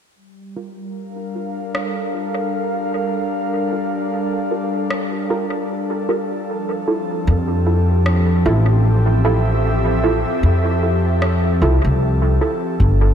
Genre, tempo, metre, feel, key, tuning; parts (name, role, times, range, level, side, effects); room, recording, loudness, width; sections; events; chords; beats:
ambient dub; 76 BPM; 4/4; swing 58% on 16ths; G dorian; A4 = 440 Hz
airy breathy pad; sustained chords; 0.2-13.1 s; F3 to F5; -21 LUFS; equal; chorus
filtered dub chord stab; stabs; 0.6-12.6 s; E4 to Bb4; -24 LUFS; right 2 dB; chorus, dub echo
electronic rim click; drums; 1.7-11.4 s; -30 LUFS; equal; dub echo
upright bass; bass; 7.3-13.1 s; G1 to F2; -15 LUFS; equal; tube saturation
electronic kick drum; drums; 12.8-13.0 s; -19 LUFS; equal
moderate lush hall reverb, RT60 2.8 s; dreamy mix soaked in reverb; -16 LUFS; side -8 dB against mid
0.2-12.8 A section
filter sweep on synth stab 0.2-12.8
0.2 Gm7; 6.5 Fmaj7
| 0.17 0.96 1.75 2.54 | 3.33 4.12 4.91 5.70 | 6.49 7.28 8.06 8.85 | 9.64 10.43 11.22 12.01 | 12.80